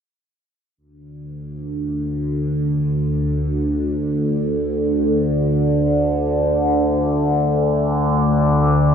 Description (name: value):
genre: ambient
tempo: free time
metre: none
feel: none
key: unclear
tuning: A4 = 441 Hz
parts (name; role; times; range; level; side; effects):
- overtone-sweeping drone; drone; 1.2-8.9 s; D2 to D3; -17 LUFS; equal; chorus, built-in reverb, phaser
room: wet cathedral reverb, RT60 5.8 s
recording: dark, warm production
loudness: -17 LUFS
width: side -7 dB against mid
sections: 0.8-8.9 A section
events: none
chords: none